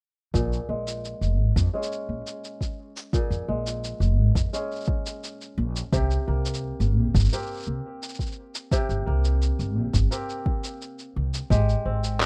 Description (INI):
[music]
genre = folktronica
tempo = 86 BPM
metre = 4/4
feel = straight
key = Bb dorian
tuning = A4 = 444 Hz
[part]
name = kora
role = arpeggios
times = 0.3-12.3 s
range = Bb2 to Ab4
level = -35 LUFS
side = equal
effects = low-pass filter, tape echo, plate reverb
[part]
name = upright bass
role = bass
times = 0.3-12.3 s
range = F1 to F2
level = -26 LUFS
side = equal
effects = none
[part]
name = electronic kick drum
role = drums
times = 0.3-11.6 s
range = none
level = -28 LUFS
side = equal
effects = none
[part]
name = electronic shaker and handclaps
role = drums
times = 0.3-12.3 s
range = none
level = -35 LUFS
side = equal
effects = none
[sound]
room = little or no reverb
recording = rough home demo mix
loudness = -26 LUFS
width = mono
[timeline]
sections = 0.3-12.3 A section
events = filter sweep on kora 0.3-12.3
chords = 0.3 Bbm7; 5.9 C5; 11.5 Abmaj7